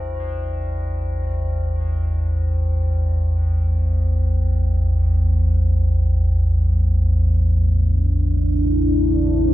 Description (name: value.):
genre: dark ambient drone.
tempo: free time.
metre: none.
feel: none.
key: A minor.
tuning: A4 = 440 Hz.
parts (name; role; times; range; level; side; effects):
tubular bells; arpeggios; 0.0-9.5 s; C4 to D4; -35 LUFS; left 8 dB; tape echo.
deep rumbling drone; drone; 0.0-9.5 s; A1 to E2; -17 LUFS; equal; built-in reverb, lush chorus.
deep dark ambient pad; sustained chords; 8.0-9.5 s; D4 to C5; -20 LUFS; equal; chorus, built-in reverb.
room: moderate cathedral reverb, RT60 6.1 s.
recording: dark, warm production.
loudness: -17 LUFS.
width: side -15 dB against mid.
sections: 0.0-9.5 A section.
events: fade-in on tubular bells 0.0-9.5.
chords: 0.0 Am.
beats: free time.